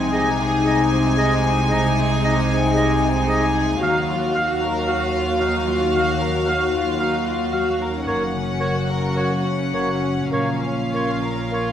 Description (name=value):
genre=cinematic, emotional film score for orchestra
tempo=56 BPM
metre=4/4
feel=rubato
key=unclear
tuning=A4 = 440 Hz
part: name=warm symphonic violin section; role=melody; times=0.0-11.7 s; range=F5 to Ab5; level=-26 LUFS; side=left 2 dB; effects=none
part: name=warm symphonic violin section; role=second line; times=0.0-11.7 s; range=Ab3 to Bb4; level=-30 LUFS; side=left 2 dB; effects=none
part: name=warm studio viola section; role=accompaniment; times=0.0-11.7 s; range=Db4 to Gb4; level=-27 LUFS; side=right 2 dB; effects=none
part: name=mellow French horn section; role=sustained chords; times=0.0-11.7 s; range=Gb3 to Gb4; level=-27 LUFS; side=left 5 dB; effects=none
part: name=concert harp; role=arpeggios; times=0.0-11.7 s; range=Gb2 to Bb4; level=-28 LUFS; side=left 7 dB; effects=none
part: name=dark symphonic double bass section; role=bass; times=0.0-11.7 s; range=Gb1 to Eb2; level=-28 LUFS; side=right 3 dB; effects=none
part: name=warm symphonic cello section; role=bass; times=0.0-11.7 s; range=Eb2 to C3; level=-26 LUFS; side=right 2 dB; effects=none
part: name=mellow clarinet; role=second line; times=0.1-11.7 s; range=Gb4 to Bb4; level=-31 LUFS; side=equal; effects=none
part: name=warm oboe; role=second line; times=0.1-11.7 s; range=Db5 to F5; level=-27 LUFS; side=right 2 dB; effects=none
room=moderate concert hall reverb, RT60 1.8 s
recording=none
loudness=-18 LUFS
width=side -9 dB against mid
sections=0.0-11.7 A section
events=none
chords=0.0 Ab/C; 3.8 Ebmadd9; 8.1 Gb; 10.3 Bbm